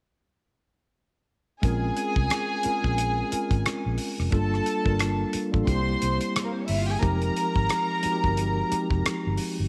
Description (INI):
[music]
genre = lush 1970s-style soul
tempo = 89 BPM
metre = 4/4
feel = swing 58% on 16ths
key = Bb dorian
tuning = A4 = 440 Hz
[part]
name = warm studio violin section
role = second line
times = 1.6-9.3 s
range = Bb3 to C6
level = -31 LUFS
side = equal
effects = none
[part]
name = mellow tine electric piano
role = accompaniment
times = 1.6-9.7 s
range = F3 to Bb4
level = -31 LUFS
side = equal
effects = none
[part]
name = vintage muted fingered electric bass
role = bass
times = 1.6-9.7 s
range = F1 to C2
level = -30 LUFS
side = equal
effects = none
[part]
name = damped 70s drum kit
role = drums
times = 1.6-9.6 s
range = hi-hat, kick drum, rim click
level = -31 LUFS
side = equal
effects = none
[sound]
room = light reverb, small room ambience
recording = none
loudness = -26 LUFS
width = mono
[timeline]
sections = 1.6-9.7 A section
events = none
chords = 1.6 Bbm7; 4.3 Gm9; 5.7 C7; 7.0 Fm9